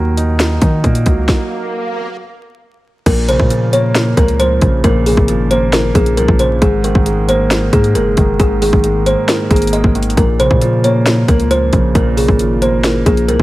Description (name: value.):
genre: hip hop, trap.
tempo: 135 BPM.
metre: 4/4.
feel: half-time.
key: Bb minor.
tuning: A4 = 440 Hz.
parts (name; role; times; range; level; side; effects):
dark baby grand piano; accompaniment; 0.0-13.4 s; Ab2 to Eb4; -17 LUFS; right 2 dB; low-pass filter.
long sustained 808-style bass; bass; 0.0-13.4 s; Gb1 to Eb3; -16 LUFS; equal; none.
swell; sound effects; 0.9-2.2 s; none; -26 LUFS; right 1 dB; none.
trap drum kit; drums; 0.2-13.4 s; crash cymbal, hi-hat, kick drum, snare drum; -14 LUFS; equal; overdrive.
kalimba; melody; 3.1-13.4 s; Ab4 to Eb5; -16 LUFS; left 1 dB; low-pass filter.
glass harmonica; sustained chords; 3.1-13.4 s; Bb3 to Bb4; -26 LUFS; left 2 dB; none.
room: little or no reverb.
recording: vinyl crackle.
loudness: -10 LUFS.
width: side -17 dB against mid.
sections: 0.0-3.1 A section; 3.1-13.4 B section.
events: swell 0.9-3.1; stop 1.3-3.1.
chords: 0.0 Ebm; 3.1 Bbmadd9; 6.6 Absus2; 10.2 Bbmadd9.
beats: 0.40 0.84 | 1.28 1.73 2.17 2.62 | 3.06 3.51 3.95 4.40 | 4.84 5.28 5.73 6.17 | 6.62 7.06 7.51 7.95 | 8.40 8.84 9.28 9.73 | 10.17 10.62 11.06 11.51 | 11.95 12.40 12.84 13.28.